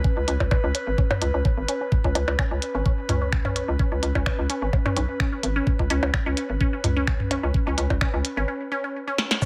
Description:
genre	minimal techno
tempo	128 BPM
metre	4/4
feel	swing 54% on 16ths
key	unclear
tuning	A4 = 439 Hz
part	resonant blip pluck	riff	0.0-9.5 s	C#4	-32 LUFS	equal	phaser, sidechain pumping, delay
part	electronic kick drum	drums	0.0-9.5 s	none	-25 LUFS	equal	none
part	airy breathy pad	texture	0.0-9.5 s	B4	-35 LUFS	equal	chorus, sidechain pumping
part	hollow knocking FM bass	bass	0.2-8.5 s	G#1 to C#2	-28 LUFS	equal	sidechain pumping
part	minimal click drum kit	drums	0.3-9.5 s	finger snaps, hi-hat, shaker, snare drum	-29 LUFS	equal	none
part	electronic percussion blips and toms	percussion	0.4-9.5 s	none	-31 LUFS	equal	overdrive, tape echo
room	little or no reverb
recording	none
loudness	-24 LUFS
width	mono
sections	0.0-9.4 A section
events	filter sweep on synth pluck 0.0-9.4; drum fill 9.2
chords	0.0 C#5

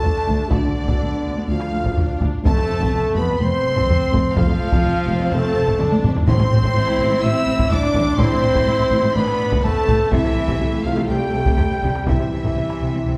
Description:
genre	cinematic, epic orchestral film score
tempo	125 BPM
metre	4/4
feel	straight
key	D dorian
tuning	A4 = 439 Hz
part	warm symphonic violin section	melody	0.0-13.2 s	D5 to E6	-35 LUFS	equal	none
part	mellow concert flute	second line	0.0-13.2 s	D5 to E6	-32 LUFS	equal	none
part	rich symphonic violin section	second line	0.0-13.2 s	D5 to E6	-35 LUFS	equal	none
part	warm symphonic viola section	accompaniment	0.0-13.2 s	G3 to E4	-31 LUFS	equal	none
part	clear trombone section	sustained chords	0.0-13.2 s	D3 to E4	-30 LUFS	equal	none
part	mellow French horn section	sustained chords	0.0-13.2 s	D4 to E5	-25 LUFS	equal	none
part	warm symphonic cello section	bass	0.0-13.1 s	D2 to C3	-28 LUFS	equal	none
part	warm symphonic double bass section	bass	0.0-13.1 s	F1 to D2	-27 LUFS	equal	none
part	taiko ensemble	drums	0.0-12.9 s	none	-23 LUFS	equal	none
part	timpani	percussion	6.3-7.0 s	A2	-26 LUFS	equal	none
room	wet scoring stage reverb, RT60 1.7 s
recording	heard from further back in the room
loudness	-19 LUFS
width	mono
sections	0.0-13.2 A section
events	drum fill 5.8-6.3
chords	0.0 Dm; 2.4 F; 6.3 Am; 10.1 C

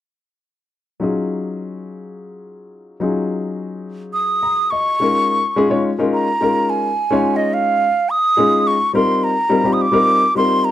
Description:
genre	jazz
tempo	212 BPM (eighths)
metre	7/8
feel	straight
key	Eb dorian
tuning	A4 = 440 Hz
part	warm grand piano	accompaniment	1.0-10.7 s	Gb3 to Bb5	-18 LUFS	left 2 dB	none
part	wooden flute	melody	4.1-10.7 s	Eb5 to Eb6	-16 LUFS	right 1 dB	slapback echo
room	light reverb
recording	dry, close 1970s-style studio recording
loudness	-15 LUFS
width	side -12 dB against mid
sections	1.0-5.0 A section; 5.0-10.7 B section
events	grand piano fill 4.1-5.0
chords	1.0 Ebm11; 5.0 Eb9sus4; 9.0 F9sus4

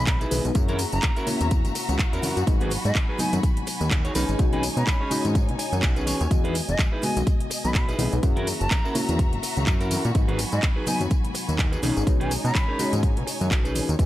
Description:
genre	filtered disco house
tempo	125 BPM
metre	4/4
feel	swing 57% on 16ths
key	G# minor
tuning	A4 = 441 Hz
part	breathy silver concert flute	melody	0.0-12.9 s	D#5 to B5	-32 LUFS	right 1 dB	vintage 12-bit sampler grit, sidechain pumping, tape echo
part	reed electric piano	accompaniment	0.0-14.1 s	F#3 to D#5	-30 LUFS	left 1 dB	phaser, sidechain pumping
part	warm studio violin section	sustained chords	0.0-14.1 s	D#4 to B5	-34 LUFS	left 1 dB	sidechain pumping
part	fat analog bass	bass	0.0-14.1 s	E1 to B2	-26 LUFS	equal	sidechain pumping
part	electronic kick drum	drums	0.1-14.1 s	none	-22 LUFS	equal	none
part	house drum kit	drums	0.1-14.1 s	handclaps, hi-hat, tambourine	-30 LUFS	equal	none
part	tube shaker and congas	percussion	0.1-14.1 s	none	-35 LUFS	left 3 dB	sidechain pumping on perc
part	clean electric guitar	riff	0.2-13.9 s	C#4 to G#5	-31 LUFS	right 1 dB	vintage 12-bit sampler grit, sidechain pumping
room	little or no reverb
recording	none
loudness	-21 LUFS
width	side -14 dB against mid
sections	0.0-14.1 A section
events	clean electric guitar fill 5.4-6.3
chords	0.0 Emaj7; 0.6 F#7; 2.5 G#m7; 6.3 Emaj7; 8.2 F#7; 10.2 G#m7; 11.8 B69

